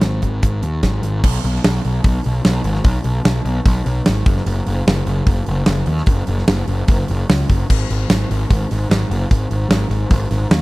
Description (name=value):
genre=classic rock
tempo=149 BPM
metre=4/4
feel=straight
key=unclear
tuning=A4 = 440 Hz
part: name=fuzz picked electric bass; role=bass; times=0.0-10.6 s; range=Gb1 to Eb2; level=-18 LUFS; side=equal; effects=overdrive
part: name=huge arena drum kit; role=drums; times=0.0-10.6 s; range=crash cymbal, hi-hat, kick drum, snare drum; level=-17 LUFS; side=equal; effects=none
room=little or no reverb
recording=dry, close 1970s-style studio recording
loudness=-15 LUFS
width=side -21 dB against mid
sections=0.0-1.2 A section; 1.2-10.6 B section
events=none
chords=none